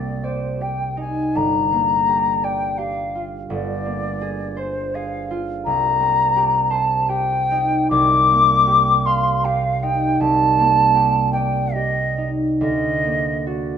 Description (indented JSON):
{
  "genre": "classical, impressionist duo for flute and harp",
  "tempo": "68-87 BPM",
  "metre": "3/4",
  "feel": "rubato",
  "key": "unclear",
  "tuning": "A4 = 439 Hz",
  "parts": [
    { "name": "mellow hollow silver concert flute", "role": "melody", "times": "0.0-13.8 s", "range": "C5 to D6", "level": "-18 LUFS", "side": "left 2 dB", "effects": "none" },
    { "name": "concert harp", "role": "accompaniment", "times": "0.0-13.8 s", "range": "G1 to F5", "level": "-22 LUFS", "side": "right 2 dB", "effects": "none" }
  ],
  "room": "moderate recital hall reverb, RT60 1.5 s",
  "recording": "close, detailed microphones",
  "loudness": "-17 LUFS",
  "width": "side -8 dB against mid",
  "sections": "0.0-13.8 A section",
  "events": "none",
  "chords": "0.0 Cm9; 1.4 Gm7; 3.5 Bb13/G; 5.7 Cm7; 7.9 Eb69/C; 10.2 Cm9; 12.6 Daug",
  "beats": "0.61 | 1.35 2.08 2.79 | 3.50 4.21 4.95 | 5.66 6.35 7.09 | 7.92 8.68 9.44 | 10.19 10.94 11.74 | 12.61 13.46"
}